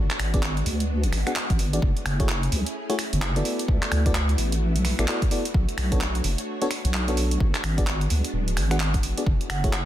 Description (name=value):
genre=UK garage, two-step garage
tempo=129 BPM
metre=4/4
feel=swing 61% on 16ths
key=unclear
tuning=A4 = 439 Hz
part: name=soft string machine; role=sustained chords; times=0.0-9.9 s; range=G#3 to C#5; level=-34 LUFS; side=equal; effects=ensemble chorus, sidechain pumping
part: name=deep soft wobble bass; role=bass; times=0.0-9.9 s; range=D1 to D2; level=-24 LUFS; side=equal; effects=chorus, sidechain pumping
part: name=house drum kit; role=drums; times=0.1-9.8 s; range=finger snaps, handclaps, hi-hat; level=-29 LUFS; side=right 1 dB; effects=soft clipping on snare
part: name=FM electric piano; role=stabs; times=0.3-9.7 s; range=A3 to F#5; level=-30 LUFS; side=left 1 dB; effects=chorus, cassette tape, dub echo
part: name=electronic kick drum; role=drums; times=0.3-9.7 s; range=none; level=-24 LUFS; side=equal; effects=none
part: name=vibraphone with hard mallets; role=melody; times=9.5-9.7 s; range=F#5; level=-33 LUFS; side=right 6 dB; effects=none
room=digital ambience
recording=dense, heavily limited modern master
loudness=-22 LUFS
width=side -13 dB against mid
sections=0.0-9.9 A section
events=none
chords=0.0 G#m7b5; 1.8 F#m7; 3.5 D69; 5.5 Bm7; 7.4 G#m7b5; 9.3 F#m7